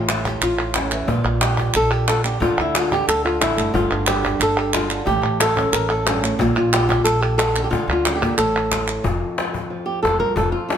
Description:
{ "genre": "flamenco", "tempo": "181 BPM", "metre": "4/4", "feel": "straight", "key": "unclear", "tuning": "A4 = 440 Hz", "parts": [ { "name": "flamenco guitar", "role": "melody", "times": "0.0-10.8 s", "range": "F2 to Bb4", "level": "-20 LUFS", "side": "right 1 dB", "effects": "none" }, { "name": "upright bass", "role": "bass", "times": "0.0-10.5 s", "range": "F1 to D2", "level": "-24 LUFS", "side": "equal", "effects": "none" }, { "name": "cajon", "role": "percussion", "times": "0.1-10.8 s", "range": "none", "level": "-25 LUFS", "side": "left 4 dB", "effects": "none" }, { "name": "palmas hand claps", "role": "percussion", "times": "0.1-9.0 s", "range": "none", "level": "-24 LUFS", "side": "right 3 dB", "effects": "none" } ], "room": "moderate stone room reverb, RT60 1.1 s", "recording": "none", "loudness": "-17 LUFS", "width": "side -8 dB against mid", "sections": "0.0-9.0 A section; 9.0-10.8 B section", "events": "nylon-string guitar solo 9.0-10.8", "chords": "0.0 A; 1.1 Bb5; 2.4 D5; 3.7 G5; 5.1 A; 6.4 Bb5; 7.7 Dmadd11; 8.4 N.C.; 9.0 F5" }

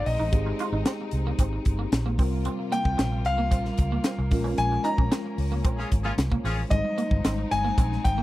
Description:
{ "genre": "polished 1980s jazz-funk pop", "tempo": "113 BPM", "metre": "4/4", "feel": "straight", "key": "Ab major", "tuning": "A4 = 440 Hz", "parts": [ { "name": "clear concert grand piano", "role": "melody", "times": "0.0-8.2 s", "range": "Eb5 to Bb5", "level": "-29 LUFS", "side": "left 2 dB", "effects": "none" }, { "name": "mellow tine electric piano", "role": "accompaniment", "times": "0.0-8.2 s", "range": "G3 to C5", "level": "-32 LUFS", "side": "left 1 dB", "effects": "medium stereo tremolo, lush chorus" }, { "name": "warm studio string section", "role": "sustained chords", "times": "0.0-8.2 s", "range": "C3 to F4", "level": "-38 LUFS", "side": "left 2 dB", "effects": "none" }, { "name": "vintage muted fingered electric bass", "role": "bass", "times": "0.0-8.2 s", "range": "G1 to Db2", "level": "-27 LUFS", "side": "equal", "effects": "none" }, { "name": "crisp fusion drum kit", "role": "drums", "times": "0.1-8.2 s", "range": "hi-hat, kick drum, snare drum", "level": "-25 LUFS", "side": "equal", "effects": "none" }, { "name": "clean electric guitar", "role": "riff", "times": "0.2-8.2 s", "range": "Ab3 to F4", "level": "-33 LUFS", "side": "right 4 dB", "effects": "ensemble chorus" }, { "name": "warm horn section", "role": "second line", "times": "5.8-6.6 s", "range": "Db4 to Ab4", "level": "-31 LUFS", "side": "left 2 dB", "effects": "none" } ], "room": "little or no reverb", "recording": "dry, close 1970s-style studio recording", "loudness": "-23 LUFS", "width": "side -16 dB against mid", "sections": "0.0-8.2 A section", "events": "band accent 4.6-6.7", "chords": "0.0 Abmaj7; 2.2 C7sus4; 4.3 Bbm7; 6.7 Abmaj7" }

